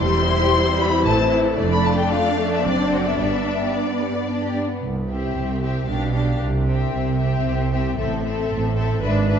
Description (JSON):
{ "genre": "quick classical-period movement for string orchestra", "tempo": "114 BPM", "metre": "3/4", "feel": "straight", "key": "C major", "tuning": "A4 = 440 Hz", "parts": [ { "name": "rich studio violin section", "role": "melody", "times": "0.0-9.4 s", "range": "C5 to C6", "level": "-26 LUFS", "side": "left 5 dB", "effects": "none" }, { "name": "rich studio violin section", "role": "second line", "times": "0.0-9.4 s", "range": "G3 to D5", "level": "-25 LUFS", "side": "left 4 dB", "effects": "none" }, { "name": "rich chamber viola section", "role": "accompaniment", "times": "0.0-9.4 s", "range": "E3 to E4", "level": "-24 LUFS", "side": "equal", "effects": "none" }, { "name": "rich chamber cello section", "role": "bass", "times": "0.0-9.4 s", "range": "C2 to C3", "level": "-25 LUFS", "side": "right 3 dB", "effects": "none" }, { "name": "rich chamber double bass section", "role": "bass", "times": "0.0-9.4 s", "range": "E1 to C2", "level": "-24 LUFS", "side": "right 3 dB", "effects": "none" } ], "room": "wet scoring stage reverb, RT60 1.6 s", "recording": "dark, warm production, nothing above 7.9 kHz", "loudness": "-18 LUFS", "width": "side -8 dB against mid", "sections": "0.0-4.8 A section; 4.8-9.4 B section", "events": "none", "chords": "0.0 C/E; 1.1 Am; 1.6 Dm/F; 2.6 D7/F#; 3.2 G; 4.8 C; 5.9 G7/B; 6.4 C; 8.0 Am", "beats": "| 0.01 0.54 1.06 | 1.58 2.11 2.65 | 3.19 3.74 4.29 | 4.83 5.36 5.89 | 6.41 6.94 7.46 | 7.98 8.50 9.02" }